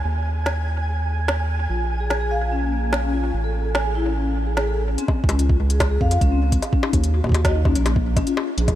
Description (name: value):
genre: IDM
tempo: 146 BPM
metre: 4/4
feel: straight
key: unclear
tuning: A4 = 440 Hz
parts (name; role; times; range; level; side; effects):
- round analog bass; bass; 0.0-8.8 s; A1 to F2; -21 LUFS; equal; none
- flickering grainy texture; texture; 0.0-5.0 s; Ab5; -32 LUFS; right 2 dB; built-in reverb, lush chorus, sidechain pumping
- organic electronic drum kit; drums; 0.5-8.8 s; bongos, hi-hat, snare drum; -28 LUFS; left 1 dB; overdrive, tape echo
- vibraphone with soft mallets; arpeggios; 1.7-8.7 s; Bb3 to G#5; -25 LUFS; left 3 dB; analog delay
- electronic kick drum; drums; 5.1-8.8 s; none; -21 LUFS; equal; overdrive
room: light reverb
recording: none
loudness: -18 LUFS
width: side -13 dB against mid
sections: 0.0-5.0 A section; 5.0-8.8 B section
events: none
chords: 0.1 Ebsus4; 1.7 Bb7(no3); 3.3 Amaj7; 5.0 Db; 6.6 Eb5